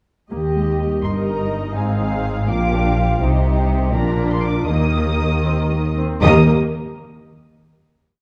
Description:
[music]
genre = quick classical-period movement for string orchestra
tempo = 76-84 BPM (dotted quarters)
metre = 6/8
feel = straight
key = Eb major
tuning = A4 = 441 Hz
[part]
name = muted studio violin section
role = second line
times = 0.3-6.5 s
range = G4 to F5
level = -28 LUFS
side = equal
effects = none
[part]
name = muted chamber viola section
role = accompaniment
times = 0.3-6.5 s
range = G3 to G4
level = -25 LUFS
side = equal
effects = none
[part]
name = muted studio cello section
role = bass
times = 0.3-6.5 s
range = Eb2 to Eb3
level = -24 LUFS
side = equal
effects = none
[part]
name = muted studio double bass section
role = bass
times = 0.3-6.5 s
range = G1 to Eb2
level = -22 LUFS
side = equal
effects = none
[part]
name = muted studio violin section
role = melody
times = 1.0-6.5 s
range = F5 to Eb6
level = -30 LUFS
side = equal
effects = none
[sound]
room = moderate recital hall reverb, RT60 1.6 s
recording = dark, warm production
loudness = -18 LUFS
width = mono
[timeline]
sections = 0.3-6.2 A section; 6.2-7.7 final chord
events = none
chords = 0.3 Eb; 1.8 Fm/Ab; 2.5 Bb; 3.2 Cm; 3.9 Bb; 4.7 Eb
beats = | 0.32 1.04 | 1.76 2.50 | 3.22 3.94 | 4.69 5.45 | 6.23

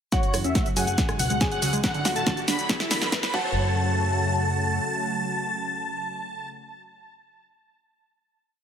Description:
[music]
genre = uplifting trance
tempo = 140 BPM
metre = 4/4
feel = straight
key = F# minor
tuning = A4 = 440 Hz
[part]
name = big supersaw lead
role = melody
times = 0.1-6.5 s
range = C#5 to B5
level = -29 LUFS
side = equal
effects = phaser, vintage 12-bit sampler grit, sidechain pumping, low-pass filter, tape echo
[part]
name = clear grand piano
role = second line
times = 0.1-6.5 s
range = F#4 to G#5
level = -33 LUFS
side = left 1 dB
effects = vintage 12-bit sampler grit, tape echo
[part]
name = lush unison pad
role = sustained chords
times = 0.1-6.5 s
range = B2 to F#4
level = -32 LUFS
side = equal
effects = chorus, phaser, vintage 12-bit sampler grit, sidechain pumping
[part]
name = wide unison pluck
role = arpeggios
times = 0.1-3.7 s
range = D2 to E4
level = -30 LUFS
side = right 1 dB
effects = phaser, sidechain pumping, tape echo
[part]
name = electronic kick drum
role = drums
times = 0.1-3.4 s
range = none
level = -26 LUFS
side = equal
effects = none
[part]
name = techno drum kit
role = drums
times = 0.1-3.3 s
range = hi-hat, rim click, shaker, snare drum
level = -27 LUFS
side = equal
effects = none
[part]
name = riser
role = sound effects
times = 1.3-3.6 s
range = none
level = -36 LUFS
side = left 1 dB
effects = none
[part]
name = solid FM bass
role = bass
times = 0.3-4.8 s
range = A1 to F#2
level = -28 LUFS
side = equal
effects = sidechain pumping
[sound]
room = light reverb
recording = high-pass filter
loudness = -22 LUFS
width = side -8 dB against mid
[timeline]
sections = 0.1-3.6 build; 3.6-7.0 final hit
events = build-up 0.1-3.6; drum fill 0.1-3.6; filter sweep on supersaw synth 0.1-3.6; filter sweep on synth pluck 0.1-3.6; filter sweep 0.1-3.6; riser 1.3-3.6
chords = 0.1 F#m; 1.0 C#sus4; 1.8 D; 2.7 E; 3.3 F#m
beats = | 0.12 0.55 0.98 1.41 | 1.84 2.27 2.69 3.12 | 3.55 3.98 4.41 4.84 | 5.27 5.70 6.12

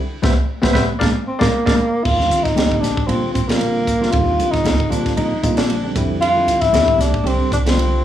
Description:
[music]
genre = electric jazz fusion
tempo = 116 BPM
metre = 4/4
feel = swing 54% on 16ths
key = Eb major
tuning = A4 = 440 Hz
[part]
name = bell-like tine electric piano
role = accompaniment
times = 0.2-8.0 s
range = D3 to F5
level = -22 LUFS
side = right 1 dB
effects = fast stereo tremolo
[part]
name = upright bass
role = bass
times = 0.2-8.0 s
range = Bb1 to F3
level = -22 LUFS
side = right 1 dB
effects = none
[part]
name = tight funk drum kit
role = drums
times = 0.2-7.9 s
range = crash cymbal, hi-hat, kick drum, ride cymbal, snare drum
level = -21 LUFS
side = right 1 dB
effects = none
[part]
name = congas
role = percussion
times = 0.2-7.9 s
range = none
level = -24 LUFS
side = left 4 dB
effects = none
[part]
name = breathy tenor saxophone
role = melody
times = 1.3-8.0 s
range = Bb3 to F4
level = -18 LUFS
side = left 1 dB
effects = none
[sound]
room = moderate large studio reverb, RT60 0.9 s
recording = band playing live in one room, small room ambience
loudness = -15 LUFS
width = side -11 dB against mid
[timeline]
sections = 0.0-2.0 A section; 2.0-8.0 B section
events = band accent 0.0-2.0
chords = 0.0 Cmaj7; 1.0 Bb7; 2.0 Ebmaj9; 5.9 Fsus2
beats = 0.49 1.01 1.53 | 2.05 2.57 3.09 3.61 | 4.13 4.65 5.17 5.69 | 6.21 6.72 7.24 7.76

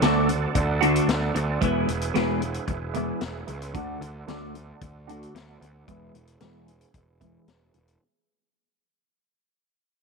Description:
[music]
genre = psychedelic rock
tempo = 113 BPM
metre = 4/4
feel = straight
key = E mixolydian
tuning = A4 = 442 Hz
[part]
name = tonewheel organ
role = sustained chords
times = 0.0-8.0 s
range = G#4 to A5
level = -34 LUFS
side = right 11 dB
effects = slow rotary speaker, overdrive, chorus vibrato, low-pass filter
[part]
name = twelve-string electric guitar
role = riff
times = 0.0-7.8 s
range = D3 to F#4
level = -25 LUFS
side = equal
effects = phaser, double-tracked left and right, low-pass filter
[part]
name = fuzz picked electric bass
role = bass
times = 0.0-8.0 s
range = E1 to D2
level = -30 LUFS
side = right 1 dB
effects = overdrive
[part]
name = vintage drum kit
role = drums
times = 0.0-8.0 s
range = hi-hat, kick drum, snare drum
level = -30 LUFS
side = left 4 dB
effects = none
[sound]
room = light reverb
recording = 1960s-style stereo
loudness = -23 LUFS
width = side -3 dB against mid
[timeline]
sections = 0.0-8.0 A section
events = fade-out 0.0-8.0; filter sweep 0.0-8.0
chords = 0.0 D; 1.6 E; 3.7 D; 5.9 E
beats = 0.02 0.56 1.09 | 1.62 2.15 2.68 3.21 | 3.75 4.28 4.81 5.34 | 5.87 6.41 6.94 7.47

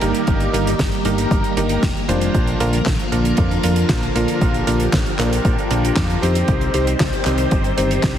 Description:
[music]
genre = italo disco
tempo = 116 BPM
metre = 4/4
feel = straight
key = unclear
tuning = A4 = 440 Hz
[part]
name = phased string machine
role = sustained chords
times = 0.0-8.2 s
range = D3 to C5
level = -22 LUFS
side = left 1 dB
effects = ensemble chorus, phaser
[part]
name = bright electric grand piano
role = stabs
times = 0.0-8.2 s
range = Bb3 to C5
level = -22 LUFS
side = right 1 dB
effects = ping-pong delay
[part]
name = deep dub fingered electric bass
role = bass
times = 0.0-8.2 s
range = F1 to F2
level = -21 LUFS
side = equal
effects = tube saturation
[part]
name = damped 70s drum kit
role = drums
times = 0.0-8.1 s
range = handclaps, hi-hat, snare drum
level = -24 LUFS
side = right 1 dB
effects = none
[part]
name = electronic kick drum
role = drums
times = 0.3-8.1 s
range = none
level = -22 LUFS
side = equal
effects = none
[sound]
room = light reverb, studio reverb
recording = heavily compressed radio sound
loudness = -16 LUFS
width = side -10 dB against mid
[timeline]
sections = 0.0-8.2 A section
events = none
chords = 0.0 Eb/G; 2.3 Bb; 6.5 Cm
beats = | 0.28 0.79 1.31 1.83 | 2.34 2.86 3.38 3.90 | 4.41 4.93 5.45 5.96 | 6.48 7.00 7.52 8.03

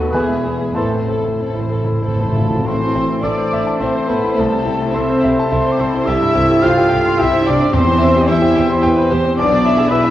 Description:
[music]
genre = classical, romantic movement for piano and orchestra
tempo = 91-114 BPM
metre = 3/4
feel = rubato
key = A minor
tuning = A4 = 442 Hz
[part]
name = clear concert grand piano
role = melody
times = 0.0-10.1 s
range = B1 to D#6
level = -18 LUFS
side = left 2 dB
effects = none
[part]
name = warm chamber violin section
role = melody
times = 0.0-10.1 s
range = B3 to C5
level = -31 LUFS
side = left 3 dB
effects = none
[part]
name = warm chamber violin section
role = second line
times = 0.0-10.1 s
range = C4 to F5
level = -24 LUFS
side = left 2 dB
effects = none
[part]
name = dark chamber viola section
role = accompaniment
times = 0.0-10.1 s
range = G#3 to E5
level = -25 LUFS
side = right 2 dB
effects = none
[part]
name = mellow French horn section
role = sustained chords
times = 0.0-10.1 s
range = A3 to A4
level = -22 LUFS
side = left 1 dB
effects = none
[part]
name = clear chamber double bass section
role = bass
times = 0.0-9.8 s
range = E1 to E2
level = -24 LUFS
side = right 3 dB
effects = none
[part]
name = rich symphonic cello section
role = bass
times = 0.0-10.1 s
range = E2 to F4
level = -22 LUFS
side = right 3 dB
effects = none
[part]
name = mellow clarinet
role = second line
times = 0.1-1.0 s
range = G#4 to A4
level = -28 LUFS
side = left 2 dB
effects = none
[part]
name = warm oboe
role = second line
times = 0.1-1.0 s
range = B4 to C5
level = -30 LUFS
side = right 2 dB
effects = none
[part]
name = mellow bassoon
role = accompaniment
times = 0.1-1.0 s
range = E3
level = -28 LUFS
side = right 2 dB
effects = none
[part]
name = timpani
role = percussion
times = 0.8-2.6, 7.7-8.5 s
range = E2 to A2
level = -22 LUFS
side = equal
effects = none
[part]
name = mellow hollow silver concert flute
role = second line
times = 2.0-10.1 s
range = A5 to F6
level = -22 LUFS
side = equal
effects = none
[sound]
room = moderate scoring stage reverb, RT60 1.7 s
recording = worn, warbling old tape, cassette tape, warbly pitch drift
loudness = -13 LUFS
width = side -13 dB against mid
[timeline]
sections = 0.0-2.7 A section; 2.7-10.1 B section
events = timpani fill 0.8-2.7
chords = 0.1 E; 0.8 Am; 4.4 Am/C; 6.1 C; 7.7 C/E; 9.4 E7/B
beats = 0.14 | 0.77 1.41 2.03 | 2.66 3.23 3.80 | 4.38 4.94 5.51 | 6.08 6.64 7.20 | 7.75 8.29 8.84 | 9.38 9.92

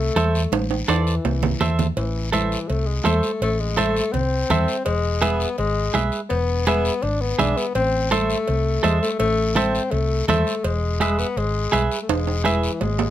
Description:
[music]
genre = latin, cumbia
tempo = 166 BPM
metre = 4/4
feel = straight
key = A harmonic minor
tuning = A4 = 440 Hz
[part]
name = mellow tenor saxophone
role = second line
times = 0.0-13.1 s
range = E3 to D4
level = -24 LUFS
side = left 4 dB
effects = none
[part]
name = hollow-body short-scale fingered electric bass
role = bass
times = 0.0-13.1 s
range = E1 to E2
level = -23 LUFS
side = equal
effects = none
[part]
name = semi-hollow electric guitar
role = accompaniment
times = 0.2-12.7 s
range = G#4 to E5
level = -22 LUFS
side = right 5 dB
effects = none
[part]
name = congas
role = percussion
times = 0.2-13.0 s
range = none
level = -28 LUFS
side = right 1 dB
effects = none
[part]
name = cowbell and timbales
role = percussion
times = 0.2-13.1 s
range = none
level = -28 LUFS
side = right 6 dB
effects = none
[part]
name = guiro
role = percussion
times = 0.2-13.1 s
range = none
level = -34 LUFS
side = left 5 dB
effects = none
[sound]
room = light reverb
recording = close, detailed microphones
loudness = -19 LUFS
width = side -12 dB against mid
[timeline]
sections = 0.0-2.0 A section; 2.0-13.1 B section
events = drum fill 0.5-2.0, 12.1-13.1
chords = 0.0 Am; 4.9 E; 7.8 Am; 10.6 E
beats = 0.17 | 0.53 0.89 1.25 1.61 | 1.97 2.33 2.70 3.06 | 3.42 3.78 4.14 4.50 | 4.87 5.23 5.59 5.95 | 6.31 6.67 7.04 7.40 | 7.76 8.12 8.48 8.84 | 9.20 9.56 9.93 10.29 | 10.65 11.01 11.37 11.73 | 12.09 12.46 12.82

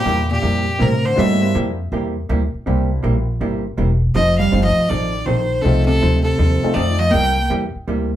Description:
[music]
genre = country, western swing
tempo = 161 BPM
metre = 4/4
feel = swing 66% on 8ths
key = C mixolydian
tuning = A4 = 440 Hz
[part]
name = clear fiddle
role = melody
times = 0.0-1.6, 4.1-7.5 s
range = G4 to G5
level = -20 LUFS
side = left 1 dB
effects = none
[part]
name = vintage hollow-body jazz guitar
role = second line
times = 0.0-1.5, 4.2-7.5 s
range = Bb2 to Bb3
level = -21 LUFS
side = right 2 dB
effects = none
[part]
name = warm upright piano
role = accompaniment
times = 0.0-7.1 s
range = A3 to A4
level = -24 LUFS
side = left 3 dB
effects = none
[part]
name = upright bass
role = bass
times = 0.0-8.2 s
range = E1 to A2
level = -19 LUFS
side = equal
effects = none
[part]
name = vintage hollow-body jazz guitar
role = accompaniment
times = 0.1-8.1 s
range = C3 to A4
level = -23 LUFS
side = right 2 dB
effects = none
[sound]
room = wet studio reverb, RT60 0.5 s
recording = band playing live in one room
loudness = -15 LUFS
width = side -12 dB against mid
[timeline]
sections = 0.0-8.2 A section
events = none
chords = 0.0 C9; 4.2 F9; 7.1 C9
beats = 0.06 0.43 0.80 | 1.17 1.54 1.92 2.29 | 2.66 3.03 3.41 3.78 | 4.15 4.52 4.90 5.27 | 5.64 6.01 6.39 6.76 | 7.13 7.51 7.88

